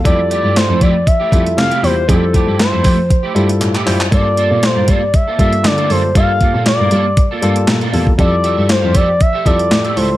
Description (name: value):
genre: early-eighties boogie funk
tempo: 118 BPM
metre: 4/4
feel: straight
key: unclear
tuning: A4 = 440 Hz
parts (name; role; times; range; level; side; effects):
- barky tine electric piano; accompaniment; 0.0-10.2 s; G3 to Bb5; -20 LUFS; left 2 dB; none
- electric guitar at the edge of break-up; riff; 0.0-10.1 s; A3 to F5; -23 LUFS; right 4 dB; ensemble chorus
- expressive portamento lead; melody; 0.1-10.2 s; A4 to F5; -16 LUFS; equal; chorus
- dark cello; bass; 0.1-10.2 s; C#2 to G3; -17 LUFS; equal; none
- crisp 8-bit digital drum machine; drums; 0.1-10.1 s; handclaps, hi-hat, kick drum, snare drum; -15 LUFS; equal; overdrive, gated reverb
room: little or no reverb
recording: none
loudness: -11 LUFS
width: side -15 dB against mid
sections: 0.0-10.2 A section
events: drum fill 3.6-4.1; tine electric piano fill 7.4-8.2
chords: 0.1 Fmaj9; 4.1 Gm9; 8.2 Fmaj9